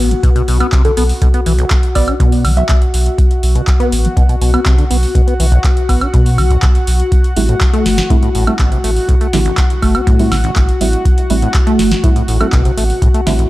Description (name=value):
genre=acid house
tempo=122 BPM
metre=4/4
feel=straight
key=unclear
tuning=A4 = 440 Hz
part: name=warm analog pad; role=sustained chords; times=0.0-13.5 s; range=F#4 to F#5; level=-21 LUFS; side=left 2 dB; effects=chorus, vintage 12-bit sampler grit, sidechain pumping
part: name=liquid acid bass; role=riff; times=0.0-13.5 s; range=A1 to D4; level=-17 LUFS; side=equal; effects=phaser, overdrive, tape echo
part: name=warm sub bass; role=bass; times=0.0-13.4 s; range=G1 to B1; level=-15 LUFS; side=equal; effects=sidechain pumping
part: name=booming analog drum machine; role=drums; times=0.1-13.5 s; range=handclaps, hi-hat, snare drum, woodblock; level=-21 LUFS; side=right 1 dB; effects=none
part: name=electronic kick drum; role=drums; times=0.2-13.1 s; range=none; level=-12 LUFS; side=equal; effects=none
part: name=soft struck synth lead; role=melody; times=0.8-2.8 s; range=A4 to E5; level=-22 LUFS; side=equal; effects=chorus, phaser, tape echo
part: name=deep mellow chord stab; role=stabs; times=7.4-13.4 s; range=G3 to E4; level=-21 LUFS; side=right 3 dB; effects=chorus, tape echo
room=digital ambience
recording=dry, gritty hardware recording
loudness=-10 LUFS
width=side -17 dB against mid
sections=0.0-13.5 A section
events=filter sweep on acid bass 0.0-13.5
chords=0.0 B5; 7.1 Am7